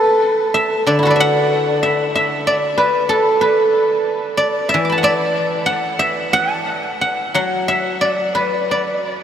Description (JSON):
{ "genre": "chinese traditional", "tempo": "92 BPM", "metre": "4/4", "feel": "rubato", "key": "A zhi mode", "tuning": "A4 = 440 Hz", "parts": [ { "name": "guzheng", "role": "solo", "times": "0.0-9.2 s", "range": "D3 to D6", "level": "-14 LUFS", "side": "equal", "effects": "diffuse ambient delay" } ], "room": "wet huge ambient reverb, RT60 7.8 s", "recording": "dreamy mix soaked in reverb", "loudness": "-14 LUFS", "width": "side -9 dB against mid", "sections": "0.0-9.2 A section", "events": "none", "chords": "none" }